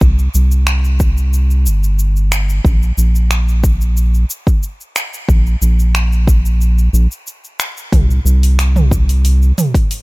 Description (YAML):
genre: organic downtempo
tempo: 91 BPM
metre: 4/4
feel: straight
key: unclear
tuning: A4 = 440 Hz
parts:
  - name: round analog bass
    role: bass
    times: 0.0-9.5 s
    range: G1 to C2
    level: -12 LUFS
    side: equal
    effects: none
  - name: deep house drum kit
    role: drums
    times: 0.0-10.0 s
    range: finger snaps, hi-hat, shaker, toms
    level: -22 LUFS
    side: right 1 dB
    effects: none
  - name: electronic kick drum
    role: drums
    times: 0.0-9.9 s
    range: none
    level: -12 LUFS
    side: equal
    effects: none
room: little or no reverb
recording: none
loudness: -11 LUFS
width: side -23 dB against mid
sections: 0.0-10.0 A section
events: none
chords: none